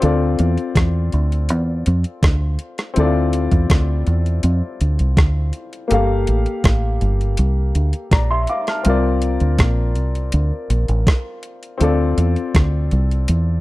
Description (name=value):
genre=lovers rock reggae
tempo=81 BPM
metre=4/4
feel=straight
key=D minor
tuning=A4 = 441 Hz
part: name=warm grand piano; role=accompaniment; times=0.0-13.6 s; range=Bb3 to F6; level=-23 LUFS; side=left 3 dB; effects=slapback echo
part: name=deep dub fingered electric bass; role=bass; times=0.0-13.6 s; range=G1 to F2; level=-17 LUFS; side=equal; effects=none
part: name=clean 12-bit digital drum machine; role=drums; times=0.0-13.5 s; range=hi-hat, kick drum, rim click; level=-17 LUFS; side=equal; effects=overdrive
room=little or no reverb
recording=dry, close 1970s-style studio recording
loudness=-16 LUFS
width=side -18 dB against mid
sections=0.0-13.6 A section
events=none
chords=0.0 Dm7; 5.9 Gm9; 8.9 C9sus4; 11.8 Dm7